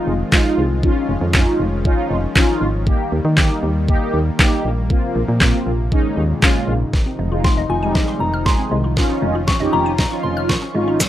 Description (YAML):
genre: dance-pop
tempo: 118 BPM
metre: 4/4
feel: straight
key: unclear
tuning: A4 = 440 Hz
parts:
  - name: mellow synth brass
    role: accompaniment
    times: 0.0-11.0 s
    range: G3 to Ab4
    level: -21 LUFS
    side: right 1 dB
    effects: chorus, phaser, sidechain pumping
  - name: soft supersaw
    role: sustained chords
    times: 0.0-11.1 s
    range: Ab2 to F4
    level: -25 LUFS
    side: left 1 dB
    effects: sidechain pumping
  - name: solid FM bass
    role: bass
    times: 0.1-11.1 s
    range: F1 to Eb3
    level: -20 LUFS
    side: equal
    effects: sidechain pumping
  - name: smooth R&B drum kit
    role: drums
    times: 0.3-11.1 s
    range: handclaps, hi-hat, kick drum, shaker, snare drum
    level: -15 LUFS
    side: equal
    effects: none
  - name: glassy wavetable pluck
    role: arpeggios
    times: 6.9-11.1 s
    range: Eb3 to F6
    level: -27 LUFS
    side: left 2 dB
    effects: chorus, sidechain pumping, tape echo
  - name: soft synth bell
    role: melody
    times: 7.4-10.8 s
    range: Ab5 to Db6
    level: -24 LUFS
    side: left 2 dB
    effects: chorus, phaser, tape echo
room: light reverb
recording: rough home demo mix, high-pass filter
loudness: -15 LUFS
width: side -12 dB against mid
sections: 0.0-6.9 A section; 6.9-11.1 B section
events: build-up 6.9-11.1; drum fill 6.9-11.1; filter sweep 6.9-11.1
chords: 0.0 Fm7; 0.8 Dbadd9/F; 2.9 Eb; 4.9 Bbsus2; 5.9 Eb7sus4; 6.9 Fm7; 9.0 Dbadd9/F